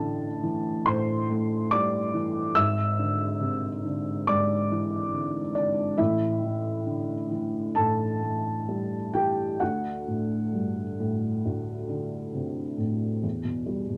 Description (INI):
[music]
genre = neoclassical minimalist piano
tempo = 64-71 BPM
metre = 4/4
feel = rubato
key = unclear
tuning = A4 = 440 Hz
[part]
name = felt-muted upright piano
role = solo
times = 0.0-14.0 s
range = G#1 to E6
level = -28 LUFS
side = equal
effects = none
[sound]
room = moderate small room ambience, RT60 0.5 s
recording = none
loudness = -27 LUFS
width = mono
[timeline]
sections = 0.0-13.2 A section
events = none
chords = 0.0 Am; 2.6 E7/G#; 6.0 A5; 9.6 D; 13.2 Em